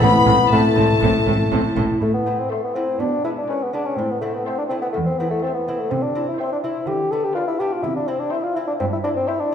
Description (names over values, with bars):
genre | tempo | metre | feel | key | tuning
classical, baroque-style concerto movement with solo episodes | 124 BPM | 4/4 | straight | A minor | A4 = 440 Hz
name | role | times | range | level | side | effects
mellow bassoon | melody | 0.0-9.5 s | A3 to A4 | -21 LUFS | left 2 dB | none
rich chamber violin section | melody | 0.0-9.5 s | F5 to B5 | -24 LUFS | left 6 dB | none
rich chamber violin section | second line | 0.0-9.5 s | D5 to B5 | -26 LUFS | left 3 dB | none
dark chamber viola section | accompaniment | 0.0-9.5 s | C4 to C5 | -29 LUFS | equal | none
lute | accompaniment | 0.0-9.5 s | E2 to A4 | -27 LUFS | equal | none
rich chamber double bass section | bass | 0.0-1.9 s | A1 | -22 LUFS | right 2 dB | none
warm chamber cello section | bass | 0.0-9.2 s | E2 to D3 | -24 LUFS | right 2 dB | none
room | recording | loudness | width
wet recital hall reverb, RT60 1.5 s | heard from further back in the room | -18 LUFS | side -8 dB against mid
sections
0.0-2.0 A section; 2.0-9.5 B section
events
none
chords
0.0 Am; 3.0 G#dim/B; 4.0 Am; 5.9 C; 6.9 Bdim/D; 7.8 C